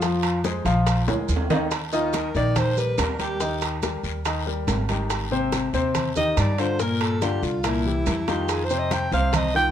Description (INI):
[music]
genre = Afro-Cuban jazz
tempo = 142 BPM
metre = 4/4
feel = straight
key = Eb major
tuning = A4 = 441 Hz
[part]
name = warm grand piano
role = accompaniment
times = 0.0-9.7 s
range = Bb2 to F5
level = -25 LUFS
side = left 3 dB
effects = none
[part]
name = upright bass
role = bass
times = 0.0-9.7 s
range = Ab1 to G2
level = -26 LUFS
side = right 1 dB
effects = none
[part]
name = bongos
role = percussion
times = 0.0-9.7 s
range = none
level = -32 LUFS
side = left 5 dB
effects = none
[part]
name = congas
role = percussion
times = 0.0-9.7 s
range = none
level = -32 LUFS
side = right 2 dB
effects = none
[part]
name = guiro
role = percussion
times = 0.0-9.7 s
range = none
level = -38 LUFS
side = left 8 dB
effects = none
[part]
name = maracas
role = percussion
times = 0.0-9.5 s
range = none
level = -38 LUFS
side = right 11 dB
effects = none
[part]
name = timbales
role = percussion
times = 0.0-9.5 s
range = none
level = -31 LUFS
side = right 6 dB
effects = none
[part]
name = warm alto saxophone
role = melody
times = 1.9-9.7 s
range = E4 to G5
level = -26 LUFS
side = right 1 dB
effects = none
[sound]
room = moderate club reverb, RT60 0.8 s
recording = minimal, uncompressed stereo recording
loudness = -21 LUFS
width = side -10 dB against mid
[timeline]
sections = 0.0-1.7 A section; 1.7-9.7 A section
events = alto saxophone solo 0.0-9.7; drum fill 1.1-1.7, 8.3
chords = 0.0 Fm; 0.9 Bb7; 1.7 Eb; 5.1 Abmaj7#11; 6.8 Gm7; 7.6 C7; 8.5 F7(no3)